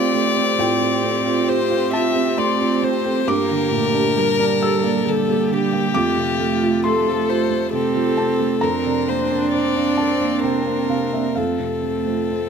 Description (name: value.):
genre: neoclassical piano and strings.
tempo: 67 BPM.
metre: 3/4.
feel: rubato.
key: F major.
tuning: A4 = 440 Hz.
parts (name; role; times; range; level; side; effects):
rich violin; melody; 0.0-12.5 s; G4 to E5; -22 LUFS; left 7 dB; none.
warm cello; second line; 0.0-12.5 s; G3 to C4; -25 LUFS; right 7 dB; none.
felt-muted upright piano; accompaniment; 0.0-12.5 s; F2 to E6; -22 LUFS; right 4 dB; none.
warm viola; accompaniment; 0.0-12.5 s; C4 to Bb4; -27 LUFS; right 1 dB; none.
marimba with soft mallets; arpeggios; 0.0-12.4 s; F4 to F5; -28 LUFS; right 2 dB; slapback echo.
room: little or no reverb.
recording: close, detailed microphones.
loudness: -17 LUFS.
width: side -6 dB against mid.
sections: 0.0-12.5 A section.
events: none.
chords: 0.0 Fadd9/A; 3.3 Gm; 6.0 Fadd9; 8.6 Bbadd9/F; 11.4 F.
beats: | 0.59 1.48 2.38 | 3.28 4.17 5.07 | 5.95 6.84 7.73 | 8.63 9.53 10.45 | 11.37 12.30.